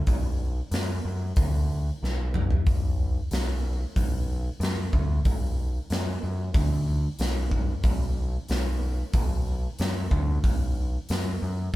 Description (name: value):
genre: stoner and doom metal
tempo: 93 BPM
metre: 4/4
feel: straight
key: B minor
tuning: A4 = 440 Hz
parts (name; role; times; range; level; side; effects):
- growling picked electric bass; bass; 0.1-11.7 s; B1 to F#2; -27 LUFS; equal; overdrive, tube saturation
- big rock drum kit; drums; 0.1-11.8 s; hi-hat, kick drum, snare drum, toms; -27 LUFS; equal; none
room: little or no reverb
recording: band playing live in one room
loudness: -24 LUFS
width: side -16 dB against mid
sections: 0.0-11.8 A section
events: drum fill 2.0-2.7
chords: none